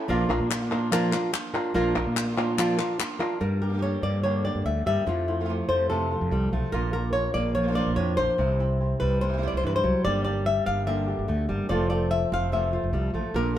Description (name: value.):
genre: flamenco.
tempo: 145 BPM.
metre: 4/4.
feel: straight.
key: unclear.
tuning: A4 = 442 Hz.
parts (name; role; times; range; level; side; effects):
flamenco guitar; melody; 0.0-13.6 s; A2 to F5; -25 LUFS; left 1 dB; none.
flamenco guitar; stabs; 0.0-13.6 s; C3 to G4; -34 LUFS; right 3 dB; none.
mellow fretless electric bass; bass; 0.1-13.6 s; F1 to Bb2; -28 LUFS; equal; none.
palmas hand claps; percussion; 0.3-3.4 s; none; -31 LUFS; left 4 dB; none.
room: wet stone room reverb, RT60 1.3 s.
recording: band playing live in one room.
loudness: -23 LUFS.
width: side -11 dB against mid.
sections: 0.0-3.4 A section; 3.4-13.6 B section.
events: none.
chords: 0.1 Bb; 3.4 Gm7; 5.1 Fmaj7; 6.7 Bb; 8.4 C; 10.0 Gm7; 11.7 Fmaj7.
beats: | 0.09 0.51 0.92 1.34 | 1.75 2.17 2.58 3.00 | 3.41 3.83 4.24 4.66 | 5.07 5.49 5.91 6.32 | 6.73 7.15 7.56 7.98 | 8.39 8.81 9.22 9.63 | 10.05 10.46 10.88 11.29 | 11.70 12.11 12.53 12.94 | 13.35.